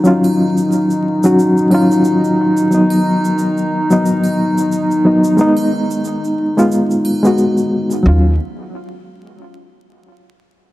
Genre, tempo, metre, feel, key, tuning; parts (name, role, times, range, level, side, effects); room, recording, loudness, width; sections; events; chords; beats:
trip hop; 90 BPM; 4/4; swing 58% on 16ths; Eb minor; A4 = 439 Hz
bright reed electric piano; accompaniment; 0.0-8.3 s; Gb3 to Gb4; -13 LUFS; left 1 dB; overdrive, tremolo, tape echo
dark analog pad; sustained chords; 0.0-8.1 s; Eb4; -18 LUFS; equal; chorus, vintage 12-bit sampler grit
egg shaker and triangle; percussion; 0.0-8.0 s; -34 LUFS; right 5 dB
upright bass; bass; 8.1-8.4 s; Eb2; -11 LUFS; equal
light reverb, digital ambience; dark, warm production, vinyl crackle; -12 LUFS; side -16 dB against mid
0.0-8.0 A section; 8.0-10.7 B section
0.0 Ebm7; 2.7 B; 5.4 Abm; 8.0 Ebm7
| 0.05 0.71 1.38 2.05 | 2.71 3.38 4.05 4.71 | 5.38 6.05 6.71 7.38 | 8.05